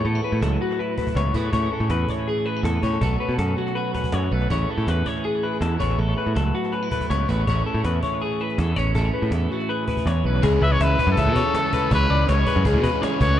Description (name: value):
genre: math rock and midwest emo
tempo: 162 BPM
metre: 4/4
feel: straight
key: unclear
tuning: A4 = 440 Hz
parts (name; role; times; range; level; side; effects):
- twelve-string electric guitar; accompaniment; 0.0-11.9 s; E2 to B4; -28 LUFS; right 5 dB; dub echo
- electric guitar through a small old amp; arpeggios; 0.0-13.4 s; F#4 to E5; -26 LUFS; left 5 dB; dub echo
- modern bright picked electric bass; bass; 0.0-13.4 s; A1 to B2; -21 LUFS; equal; none
- cajon; drums; 0.1-13.3 s; none; -31 LUFS; equal; dub echo
- overdriven electric guitar; riff; 10.4-13.4 s; C#3 to C#4; -26 LUFS; right 2 dB; dub echo
- clear trumpet; melody; 10.6-13.4 s; A4 to E5; -24 LUFS; left 2 dB; dub echo
room: light reverb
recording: echo-heavy mix, nothing above 10.3 kHz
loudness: -20 LUFS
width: side -11 dB against mid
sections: 0.0-10.4 A section; 10.4-13.4 B section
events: kick and snare drop out 4.3, 10.2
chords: 0.0 F#m11; 1.5 Amaj7; 3.0 Bsus2; 4.5 Amaj7; 5.8 F#m11/A; 7.5 Amaj7; 9.0 Amaj9; 10.4 C#m7